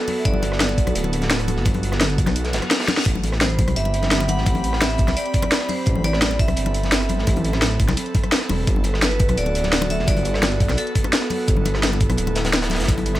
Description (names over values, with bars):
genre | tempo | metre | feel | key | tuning
liquid drum and bass | 171 BPM | 4/4 | straight | unclear | A4 = 437 Hz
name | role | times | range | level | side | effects
vibraphone with hard mallets | melody | 0.0-0.9, 3.4-13.2 s | A4 to F#5 | -27 LUFS | right 1 dB | digital delay
airy breathy pad | sustained chords | 0.0-13.2 s | B3 to B5 | -28 LUFS | right 1 dB | chorus, sidechain pumping
crunchy breakbeat drum kit | drums | 0.1-13.2 s | hi-hat, snare drum | -29 LUFS | equal | high-pass filter on hats, high-pass filter on snare, high-pass filter on room
drum and bass drum kit | drums | 0.1-13.2 s | hi-hat, rim click, snare drum | -22 LUFS | equal | none
congas | percussion | 0.1-13.2 s | none | -29 LUFS | left 5 dB | none
dark detuned saw bass | bass | 0.3-13.2 s | D1 to C2 | -23 LUFS | equal | none
electronic kick drum | drums | 0.3-13.0 s | none | -21 LUFS | equal | none
reverse cymbal | sound effects | 2.5-3.1 s | none | -30 LUFS | left 4 dB | none
room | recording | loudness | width
small room ambience | none | -17 LUFS | side -15 dB against mid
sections
0.0-13.2 A section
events
kick drops out 2.4-3.1; reverse cymbal 2.5-3.1; drum fill 2.9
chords
0.0 Gmaj9; 3.1 Am9; 8.7 Gmaj9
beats
| 0.25 0.60 0.95 1.31 | 1.66 2.01 2.36 2.71 | 3.06 3.41 3.76 4.11 | 4.46 4.81 5.17 5.52 | 5.87 6.22 6.57 6.92 | 7.27 7.62 7.97 8.32 | 8.67 9.03 9.38 9.73 | 10.08 10.43 10.78 11.13 | 11.48 11.83 12.18 12.53 | 12.88